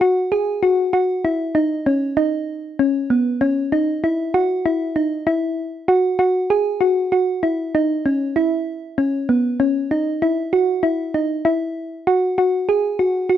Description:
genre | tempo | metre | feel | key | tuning
progressive instrumental, progressive | 97 BPM | 5/4 | straight | unclear | A4 = 436 Hz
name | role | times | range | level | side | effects
thumb-piano-like synth pluck | solo | 0.0-13.4 s | B3 to G#4 | -17 LUFS | equal | chorus
room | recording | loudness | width
light reverb | dry, close 1970s-style studio recording | -17 LUFS | side -10 dB against mid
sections
0.0-8.4 A section; 8.4-13.4 B section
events
none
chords
none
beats
0.32 0.94 1.56 | 2.18 2.79 3.41 4.03 4.65 | 5.27 5.89 6.50 7.12 7.74 | 8.36 8.98 9.59 10.21 10.83 | 11.45 12.07 12.68 13.30

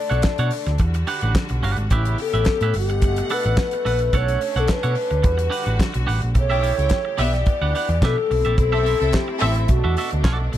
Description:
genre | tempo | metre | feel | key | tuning
disco | 108 BPM | 4/4 | straight | B minor | A4 = 440 Hz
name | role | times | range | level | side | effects
mellow wooden-headed alto flute | melody | 0.0-10.2 s | E4 to D5 | -24 LUFS | left 2 dB | none
bright studio string section | sustained chords | 0.0-10.6 s | B2 to F#5 | -31 LUFS | left 1 dB | none
twangy electric guitar | accompaniment | 0.1-10.6 s | C4 to F#5 | -28 LUFS | right 5 dB | none
hollow-body short-scale picked electric bass | bass | 0.1-10.6 s | G1 to B2 | -21 LUFS | equal | none
damped 70s drum kit | drums | 0.1-10.6 s | handclaps, hi-hat, kick drum, snare drum | -22 LUFS | equal | none
clear studio string section | second line | 6.5-9.6 s | B3 to G5 | -26 LUFS | left 1 dB | none
room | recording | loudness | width
light reverb | dark, warm production | -18 LUFS | side -12 dB against mid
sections
0.0-6.4 A section; 6.4-10.6 B section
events
none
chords
0.0 Bm9; 0.8 Em9; 1.9 A9; 2.7 Gmaj9; 4.1 Bm9; 5.2 Em9; 6.4 A7/B; 7.2 G6/B; 8.3 C6; 9.7 Bm7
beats
0.24 0.79 1.35 | 1.91 2.46 3.02 3.57 | 4.13 4.69 5.24 5.80 | 6.35 6.91 7.47 8.02 | 8.58 9.13 9.69 10.25

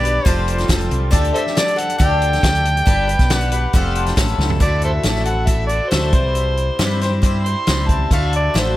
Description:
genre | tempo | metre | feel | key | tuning
folk rock and heartland rock | 138 BPM | 4/4 | straight | unclear | A4 = 441 Hz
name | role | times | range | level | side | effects
overdriven harmonica | melody | 0.0-8.8 s | A4 to C6 | -21 LUFS | right 1 dB | analog delay
picked twelve-string acoustic guitar | accompaniment | 0.0-8.8 s | C3 to C5 | -23 LUFS | left 3 dB | wide subtle chorus, analog delay
fingered electric bass | bass | 0.0-8.8 s | F1 to G2 | -20 LUFS | equal | none
vintage drum kit | drums | 0.0-8.7 s | hi-hat, kick drum, snare drum, toms | -19 LUFS | equal | none
room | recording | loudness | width
studio reverb | echo-heavy mix | -15 LUFS | side -15 dB against mid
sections
0.0-4.6 A section; 4.6-8.8 B section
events
drum fill 4.4; harmonica solo 4.6-8.8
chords
0.3 Fadd9; 1.1 Dsus4; 2.9 G; 3.7 Fadd9; 4.2 A; 4.6 Dadd9; 6.1 C; 8.1 Dadd9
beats
0.26 0.69 | 1.13 1.57 2.00 2.44 | 2.87 3.31 3.75 4.18 | 4.62 5.05 5.49 5.93 | 6.37 6.80 7.24 7.68 | 8.12 8.55

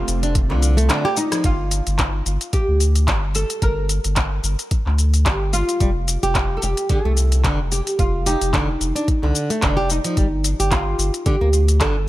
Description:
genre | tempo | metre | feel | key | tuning
organic downtempo | 110 BPM | 4/4 | swing 56% on 16ths | G minor | A4 = 440 Hz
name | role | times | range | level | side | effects
oud | melody | 0.0-12.1 s | D4 to Bb4 | -25 LUFS | equal | tape echo
warm analog pad | sustained chords | 0.0-1.4 s | A3 to F4 | -29 LUFS | right 2 dB | chorus, tremolo, sidechain pumping
round analog bass | bass | 0.0-12.1 s | F1 to D2 | -19 LUFS | equal | sidechain pumping
organic electronic drum kit | drums | 0.1-11.9 s | cabasa, handclaps, hi-hat, rim click | -24 LUFS | left 1 dB | none
flamenco guitar | arpeggios | 0.2-1.4, 5.8-12.0 s | D3 to G4 | -24 LUFS | right 1 dB | digital delay
electronic kick drum | drums | 0.4-11.9 s | none | -21 LUFS | equal | none
room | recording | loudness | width
little or no reverb | none | -17 LUFS | side -16 dB against mid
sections
0.0-1.4 A section; 1.4-12.1 B section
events
break 0.9-1.4; drum fill 0.9-1.4; band accent 1.3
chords
0.0 F; 1.4 Gm7; 5.8 F7(no3); 10.2 G7(no3)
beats
0.35 0.90 | 1.44 1.99 2.53 3.08 | 3.62 4.17 4.72 5.26 | 5.81 6.35 6.90 7.44 | 7.99 8.53 9.08 9.62 | 10.17 10.72 11.26 11.81

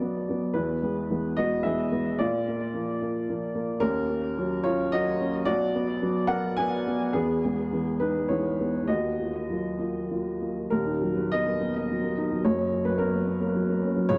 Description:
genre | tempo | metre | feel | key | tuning
neoclassical minimalist piano | 97-111 BPM | 3/4 | rubato | Eb minor | A4 = 437 Hz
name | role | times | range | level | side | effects
dark upright piano | solo | 0.0-14.2 s | Eb1 to Ab5 | -27 LUFS | equal | tape echo
room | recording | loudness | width
wet studio reverb, RT60 0.6 s | dark, warm production | -27 LUFS | mono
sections
0.0-10.7 A section; 10.7-14.2 B section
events
none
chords
0.0 Bm; 0.6 E; 2.2 Bb; 3.8 Ebm7; 5.5 Bm; 7.2 E; 8.9 Ebmadd9; 10.7 Ebm; 12.4 Gb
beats
0.01 | 0.55 1.10 1.65 | 2.21 2.75 3.30 | 3.84 4.39 4.94 | 5.48 6.04 6.59 | 7.15 7.72 8.30 | 8.89 9.50 10.10 | 10.71 11.32 11.88 | 12.44 12.98 13.54 | 14.09

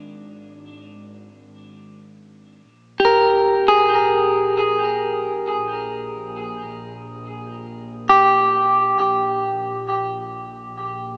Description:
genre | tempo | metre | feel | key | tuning
ambient | free time | none | none | unclear | A4 = 440 Hz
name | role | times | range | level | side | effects
warm symphonic double bass section | bass | 0.0-11.2 s | Ab1 to Bb1 | -37 LUFS | equal | none
clean electric guitar | arpeggios | 3.0-9.7 s | G4 to Bb4 | -16 LUFS | equal | diffuse ambient delay
room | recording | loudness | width
wet cathedral reverb, RT60 6.0 s | cassette tape, small speaker sound | -16 LUFS | side -30 dB against mid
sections
0.0-11.2 A section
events
fade-in on double bass section 0.0-11.2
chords
0.0 N.C.; 2.7 Gm/Bb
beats
free time

